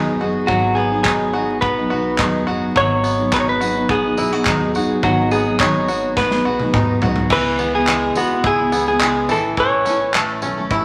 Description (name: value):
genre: acoustic pop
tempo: 106 BPM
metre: 4/4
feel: straight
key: unclear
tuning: A4 = 438 Hz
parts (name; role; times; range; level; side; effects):
- direct-recorded clean electric guitar; melody; 0.0-10.1 s; F#4 to C#5; -21 LUFS; equal; none
- picked steel-string acoustic guitar; accompaniment; 0.0-10.8 s; G#2 to A4; -24 LUFS; equal; none
- bluegrass banjo; arpeggios; 0.0-10.8 s; E3 to F#4; -25 LUFS; equal; none
- upright bass; bass; 0.0-10.8 s; F#1 to D#2; -32 LUFS; equal; none
- modern studio drum kit; drums; 0.5-10.8 s; crash cymbal, handclaps, kick drum, snare drum, tambourine, toms; -24 LUFS; equal; none
room: wet large studio reverb, RT60 1.2 s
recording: vinyl crackle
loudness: -18 LUFS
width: mono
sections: 0.0-7.3 A section; 7.3-10.8 B section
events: drum fill 6.2-7.3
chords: 0.0 G#m7; 7.3 C#m7; 9.3 A